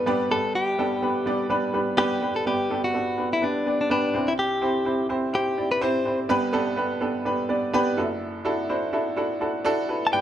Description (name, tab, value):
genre	pop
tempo	125 BPM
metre	4/4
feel	swing 56% on 16ths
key	G major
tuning	A4 = 440 Hz
part	direct-recorded clean electric guitar	melody	0.0-6.2, 10.1-10.2 s	D4 to A5	-24 LUFS	left 2 dB	plate reverb
part	clear upright piano	accompaniment	0.0-10.2 s	F#1 to B5	-24 LUFS	right 1 dB	plate reverb
room	wet studio reverb, RT60 0.5 s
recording	none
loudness	-22 LUFS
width	side -10 dB against mid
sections	0.0-2.5 A section; 2.5-10.1 B section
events	upright piano fill 8.7-10.1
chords	0.0 G; 4.1 C; 6.3 G; 8.0 Dadd9/F#